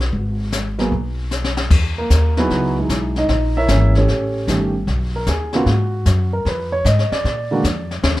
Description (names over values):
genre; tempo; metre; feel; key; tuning
jazz piano trio; 152 BPM; 4/4; swing 67% on 8ths; G# minor; A4 = 440 Hz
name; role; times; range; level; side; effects
dark baby grand piano; melody; 0.0-7.9 s; C#3 to E5; -20 LUFS; right 1 dB; plate reverb
upright bass; bass; 0.0-8.2 s; G1 to A#2; -18 LUFS; equal; none
jazz brush drum kit; drums; 0.0-8.2 s; brushed snare drum, crash cymbal, hi-hat, kick drum, snare drum; -22 LUFS; left 2 dB; none
room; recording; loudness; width
light reverb; none; -16 LUFS; side -16 dB against mid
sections
0.0-1.7 A section; 1.7-8.2 B section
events
drum fill 1.3-1.7; grand piano solo 1.7-8.2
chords
0.0 G#m7; 1.7 Emaj9; 3.3 A#m7b5; 4.1 A7#11; 4.9 G#m9; 6.5 Fm7b5; 7.2 A#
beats
| 0.14 0.53 0.93 1.32 | 1.72 2.11 2.51 2.90 | 3.30 3.69 4.09 4.48 | 4.88 5.27 5.67 6.06 | 6.46 6.85 7.25 7.64 | 8.04